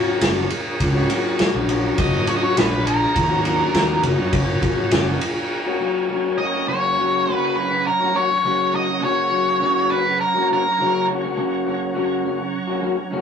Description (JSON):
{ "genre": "psychedelic rock", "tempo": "102 BPM", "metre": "4/4", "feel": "straight", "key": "F# major", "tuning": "A4 = 441 Hz", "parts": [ { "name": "bright tonewheel organ", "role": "sustained chords", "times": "0.0-13.2 s", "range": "A#4 to C#6", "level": "-31 LUFS", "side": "equal", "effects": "slow rotary speaker, chorus vibrato" }, { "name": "electric guitar through a small old amp", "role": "riff", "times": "0.0-13.2 s", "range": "F#2 to F#4", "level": "-22 LUFS", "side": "left 2 dB", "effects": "none" }, { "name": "fuzz fingered electric bass", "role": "bass", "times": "0.2-5.2 s", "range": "F#1 to F#2", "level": "-22 LUFS", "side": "equal", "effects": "overdrive" }, { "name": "vintage drum kit", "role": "drums", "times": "0.2-5.3 s", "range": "kick drum, ride cymbal, snare drum", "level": "-22 LUFS", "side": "equal", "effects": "none" }, { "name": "octave-fuzz lead guitar", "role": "melody", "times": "2.0-11.1 s", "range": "A#4 to D#5", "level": "-20 LUFS", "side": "equal", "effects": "distortion" } ], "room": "moderate booth ambience, RT60 0.2 s", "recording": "rough rehearsal-room recording, tube saturation, small room ambience", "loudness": "-17 LUFS", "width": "side -7 dB against mid", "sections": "0.0-6.7 A section; 6.7-13.2 B section", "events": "break 5.5-6.7", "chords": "0.0 F#", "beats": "0.22 0.81 1.40 | 1.98 2.57 3.16 3.75 | 4.33 4.92 5.50 6.09 | 6.68 7.26 7.85 8.43 | 9.02 9.60 10.19 10.77 | 11.36 11.95 12.53 13.12" }